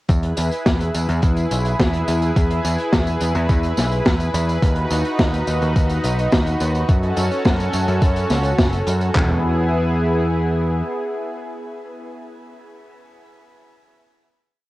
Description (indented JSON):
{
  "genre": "synthwave",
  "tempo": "106 BPM",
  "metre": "4/4",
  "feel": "straight",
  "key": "E major",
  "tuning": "A4 = 440 Hz",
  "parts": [
    { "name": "lush unison pad", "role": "sustained chords", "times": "0.1-12.2 s", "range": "B3 to B4", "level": "-23 LUFS", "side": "equal", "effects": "chorus, sidechain pumping, cassette tape, shimmer reverb" },
    { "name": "picked electric bass", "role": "bass", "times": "0.1-10.8 s", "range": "F#1 to F#2", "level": "-20 LUFS", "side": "equal", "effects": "tube saturation" },
    { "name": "gated 80s digital drum machine", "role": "drums", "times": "0.1-9.3 s", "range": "handclaps, kick drum, toms", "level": "-18 LUFS", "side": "equal", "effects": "gated reverb, overdrive, cassette tape" },
    { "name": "open jazz drum kit", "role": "drums", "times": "0.1-9.1 s", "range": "hi-hat, snare drum, tambourine", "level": "-23 LUFS", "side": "equal", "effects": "cassette tape" }
  ],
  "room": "light reverb",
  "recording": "home recording on cassette",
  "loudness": "-16 LUFS",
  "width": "side -18 dB against mid",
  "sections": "0.1-9.2 chorus; 9.2-11.4 final chord",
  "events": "none",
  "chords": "0.1 E; 4.6 B/D#; 6.9 F#m; 9.2 E",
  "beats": "| 0.10 0.66 1.23 1.79 | 2.36 2.93 3.49 4.06 | 4.62 5.19 5.76 6.32 | 6.89 7.46 8.02 8.59 | 9.15 9.72 10.29 10.85"
}